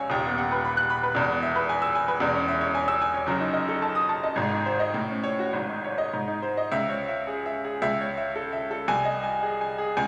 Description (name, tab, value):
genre	classical, virtuoso piano study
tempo	100-116 BPM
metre	2/4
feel	rubato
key	C# minor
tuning	A4 = 440 Hz
part	bright baby grand piano	solo	0.0-10.1 s	D#1 to F#6	-26 LUFS	equal	none
room	wet scoring stage reverb, RT60 1.7 s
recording	none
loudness	-26 LUFS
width	mono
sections	0.0-6.7 A section; 6.7-10.1 B section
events	none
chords	0.1 B/D#; 1.2 E; 2.2 C#m/E; 3.3 D#dim/F#; 4.4 G#; 4.9 F#m/A; 5.5 G#sus4; 6.1 G#; 6.7 C#m; 7.8 A/C#; 8.9 G#/B#